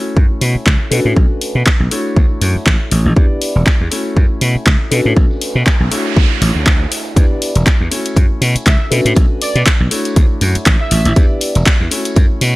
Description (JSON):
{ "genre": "filtered disco house", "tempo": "120 BPM", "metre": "4/4", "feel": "swing 56% on 16ths", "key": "D major", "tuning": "A4 = 439 Hz", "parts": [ { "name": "dark grand piano", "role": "accompaniment", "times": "0.0-12.6 s", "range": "A3 to D5", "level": "-21 LUFS", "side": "left 1 dB", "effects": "phaser, sidechain pumping, low-pass filter" }, { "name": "tambourine", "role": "percussion", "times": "0.1-12.5 s", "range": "none", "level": "-35 LUFS", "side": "right 2 dB", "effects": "none" }, { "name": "slap bass", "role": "bass", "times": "0.2-12.5 s", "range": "E1 to B2", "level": "-14 LUFS", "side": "equal", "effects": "transformer saturation, sidechain pumping, low-pass filter" }, { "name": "electronic kick drum", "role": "drums", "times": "0.2-12.3 s", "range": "none", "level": "-11 LUFS", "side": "equal", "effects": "studio reverb" }, { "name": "house drum kit", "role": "drums", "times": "0.4-12.5 s", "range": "handclaps, hi-hat", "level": "-18 LUFS", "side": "equal", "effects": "sidechain pumping on hats, studio reverb" }, { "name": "noise sweep", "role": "sound effects", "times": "5.5-7.2 s", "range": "none", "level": "-24 LUFS", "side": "right 5 dB", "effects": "none" }, { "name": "analog synth brass", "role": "melody", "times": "8.7-11.2 s", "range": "D5 to E5", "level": "-24 LUFS", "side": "right 2 dB", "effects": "chorus, sidechain pumping, low-pass filter" } ], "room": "digital ambience", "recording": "dry, gritty hardware recording", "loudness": "-11 LUFS", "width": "side -20 dB against mid", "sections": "0.0-12.6 A section", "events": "noise sweep 5.5-7.2", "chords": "0.0 F#m7; 0.9 Bm9; 1.9 Dmaj9; 3.2 Em7; 3.9 F#m7; 4.9 Bm9; 5.9 Dmaj9; 7.2 Em7; 7.9 F#m7; 8.9 Bm9; 9.9 Dmaj9; 11.2 Em7; 11.9 F#m7" }